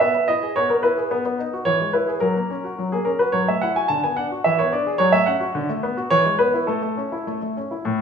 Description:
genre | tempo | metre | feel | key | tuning
classical-period piano sonatina | 108 BPM | 2/4 | straight | A major from 3.4 s | A4 = 440 Hz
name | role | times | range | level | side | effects
clear baby grand piano | solo | 0.0-8.0 s | A2 to A5 | -18 LUFS | equal | none
room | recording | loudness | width
wet recital hall reverb, RT60 1.3 s | small room ambience | -19 LUFS | side -6 dB against mid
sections
0.0-7.8 A section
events
none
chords
0.0 E/B; 1.1 B; 1.7 E; 2.2 F#; 3.4 F#m7; 3.9 Bm/D; 4.5 E7; 5.0 F#m; 5.6 Bm7/D; 6.1 E; 6.7 A

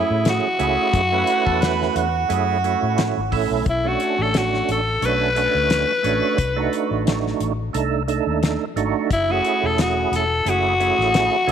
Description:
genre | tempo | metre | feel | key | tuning
straight-eighth soul blues | 88 BPM | 4/4 | swing 55% on 16ths | F# minor | A4 = 440 Hz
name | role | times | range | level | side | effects
raspy tenor saxophone | melody | 0.0-11.5 s | E4 to B4 | -20 LUFS | left 2 dB | none
percussive tonewheel organ | accompaniment | 0.0-11.5 s | A3 to B4 | -23 LUFS | right 9 dB | slow rotary speaker, overdrive, chorus vibrato
vintage muted fingered electric bass | bass | 0.1-11.5 s | E1 to A2 | -25 LUFS | left 2 dB | none
damped 70s drum kit | drums | 0.3-11.5 s | hi-hat, kick drum, snare drum | -25 LUFS | left 2 dB | none
clear harmonica | second line | 1.3-3.5, 11.5 s | F#4 to B4 | -24 LUFS | right 7 dB | overdrive
room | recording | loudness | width
moderate plate reverb, RT60 2.1 s | 1960s-style stereo | -18 LUFS | side -8 dB against mid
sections
0.0-11.5 A section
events
none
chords
0.0 F#m7; 3.7 Bm7; 6.4 Cdim7; 9.1 F#m7

